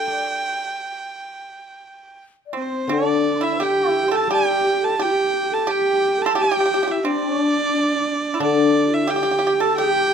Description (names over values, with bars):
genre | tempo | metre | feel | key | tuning
chinese traditional, Chinese chamber ensemble | 87 BPM | 4/4 | rubato | G zhi mode | A4 = 440 Hz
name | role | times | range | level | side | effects
clear erhu | melody | 0.0-10.1 s | C5 to C6 | -23 LUFS | right 3 dB | none
guzheng | accompaniment | 0.0-10.1 s | D3 to D5 | -24 LUFS | left 7 dB | none
breathy mellow low xiao | second line | 2.5-10.1 s | D4 to C6 | -24 LUFS | left 8 dB | none
dark horsehead fiddle | second line | 2.5-10.1 s | C4 to G4 | -23 LUFS | right 5 dB | none
pipa | second line | 2.5-10.1 s | C4 to C5 | -25 LUFS | right 5 dB | none
room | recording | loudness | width
light reverb | close, detailed microphones | -17 LUFS | side -7 dB against mid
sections
0.0-2.9 A section; 2.9-10.1 B section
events
none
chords
none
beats
| 0.09 0.78 1.48 2.19 | 2.89 3.59 4.29 4.98 | 5.68 6.36 7.04 7.72 | 8.40 9.08 9.77